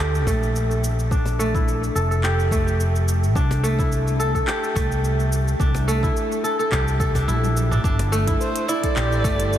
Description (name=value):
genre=organic downtempo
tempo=107 BPM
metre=4/4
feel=swing 55% on 16ths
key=unclear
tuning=A4 = 440 Hz
part: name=kora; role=arpeggios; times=0.0-9.6 s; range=A3 to A4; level=-23 LUFS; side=equal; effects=low-pass filter, tape echo
part: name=fretless electric bass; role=bass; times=0.0-9.6 s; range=F1 to D2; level=-21 LUFS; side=equal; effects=sidechain pumping
part: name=organic electronic drum kit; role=drums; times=0.1-9.6 s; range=cabasa, handclaps, hi-hat, toms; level=-31 LUFS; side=equal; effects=none
part: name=electronic kick drum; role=drums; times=0.3-9.4 s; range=none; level=-24 LUFS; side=equal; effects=none
part: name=cajon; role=percussion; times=0.3-9.4 s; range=none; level=-34 LUFS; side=left 1 dB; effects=none
part: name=dark kamancheh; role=melody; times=8.4-9.6 s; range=C5 to D5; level=-26 LUFS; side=right 2 dB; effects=none
room=moderate huge ambient reverb, RT60 7.2 s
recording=dreamy mix soaked in reverb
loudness=-18 LUFS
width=side -11 dB against mid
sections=0.0-9.6 A section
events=drum fill 7.3-7.8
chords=0.0 Bbmaj7; 3.4 C; 7.8 Gm